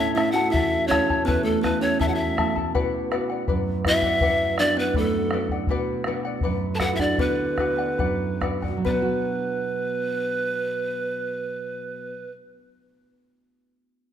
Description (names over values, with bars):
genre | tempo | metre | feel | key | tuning
andean folk, Andean ensemble | 66-82 BPM | 2/4 | straight | B minor pentatonic | A4 = 442 Hz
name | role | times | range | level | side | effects
breathy pan flute | melody | 0.0-12.3 s | A4 to A5 | -24 LUFS | right 1 dB | none
kalimba | second line | 0.0-12.3 s | A3 to A4 | -28 LUFS | right 1 dB | none
charango | accompaniment | 0.0-12.4 s | E4 to A5 | -29 LUFS | left 6 dB | none
nylon-string guitar | accompaniment | 0.0-12.5 s | E2 to F#4 | -30 LUFS | right 3 dB | none
bombo | percussion | 0.2-9.3 s | none | -29 LUFS | left 2 dB | none
room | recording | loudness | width
moderate concert hall reverb, RT60 1.8 s | minimal, uncompressed stereo recording | -21 LUFS | side -9 dB against mid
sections
0.0-8.9 A section; 8.9-12.5 B section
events
slowing down 5.7-8.9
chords
0.0 A; 2.7 Bm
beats
0.53 | 1.27 2.01 | 2.75 3.48 | 4.22 4.95 | 5.68 6.42 | 7.18 7.99 | 8.86 9.77 | 10.67 11.57